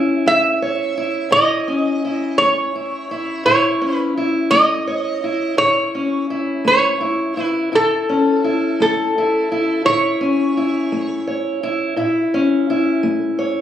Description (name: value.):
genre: acoustic country blues, solo or duo.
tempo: 56 BPM (dotted quarters).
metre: 12/8.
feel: straight.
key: A major.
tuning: A4 = 440 Hz.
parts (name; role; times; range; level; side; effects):
fingerpicked steel-string acoustic guitar; accompaniment; 0.0-13.6 s; A2 to C#5; -18 LUFS; left 1 dB; none.
metal-body resonator slide guitar; melody; 0.3-11.2 s; A4 to E5; -17 LUFS; right 1 dB; none.
room: light reverb.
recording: recorded on a phone in the room, studio reverb.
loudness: -15 LUFS.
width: side -10 dB against mid.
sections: 0.0-13.6 A section.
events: none.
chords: 0.0 A.